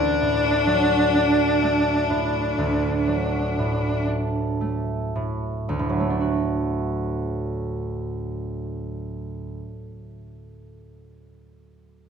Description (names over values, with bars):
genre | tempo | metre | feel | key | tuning
classical, romantic duo for cello and harp | 37-44 BPM (dotted quarters) | 12/8 | rubato | D major | A4 = 440 Hz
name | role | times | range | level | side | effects
clear cello | melody | 0.0-4.1 s | D4 | -22 LUFS | left 3 dB | none
concert harp | accompaniment | 0.0-9.8 s | D2 to F#4 | -24 LUFS | right 2 dB | none
room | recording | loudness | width
wet recital hall reverb, RT60 1.6 s | minimal, uncompressed stereo recording | -21 LUFS | side -7 dB against mid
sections
0.0-5.7 A section; 5.7-11.8 B section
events
slowing down 0.0-5.7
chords
0.0 D